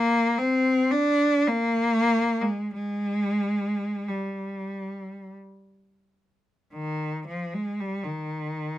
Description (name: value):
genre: classical, free, expressive piece for unaccompanied cello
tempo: 36-60 BPM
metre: 3/4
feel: rubato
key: unclear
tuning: A4 = 437 Hz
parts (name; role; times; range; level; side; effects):
- rich cello; solo; 0.0-8.8 s; Eb3 to D4; -24 LUFS; equal; none
room: little or no reverb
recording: close, detailed microphones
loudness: -23 LUFS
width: side -13 dB against mid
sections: 0.0-6.7 A section; 6.7-8.8 B section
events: none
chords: none